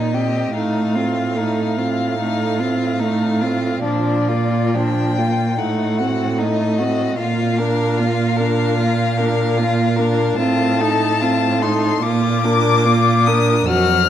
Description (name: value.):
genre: classical, slow romantic movement for string quartet.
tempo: 73 BPM.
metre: 4/4.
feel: rubato.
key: Bb major.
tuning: A4 = 440 Hz.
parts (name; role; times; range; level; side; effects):
warm violin; melody; 0.0-14.1 s; D5 to F6; -22 LUFS; left 7 dB; none.
clear violin; second line; 0.0-14.1 s; D4 to Bb4; -22 LUFS; left 2 dB; none.
rich viola; accompaniment; 0.0-14.1 s; F3 to Eb4; -21 LUFS; right 2 dB; none.
rich cello; bass; 0.0-14.1 s; F2 to Bb2; -20 LUFS; right 3 dB; none.
room: wet recital hall reverb, RT60 1.8 s.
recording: dark, warm production.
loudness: -16 LUFS.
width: side -10 dB against mid.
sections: 0.0-14.1 A section.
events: none.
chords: 0.0 Cm7/Bb; 0.5 F7/A; 3.8 Bb; 5.6 Adim7; 7.2 Bb; 10.4 F7/A; 12.0 Bb.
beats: | 0.54 1.36 2.19 3.00 | 3.83 4.75 5.58 6.40 | 7.20 8.00 8.80 9.60 | 10.40 11.22 12.03 12.85 | 13.68.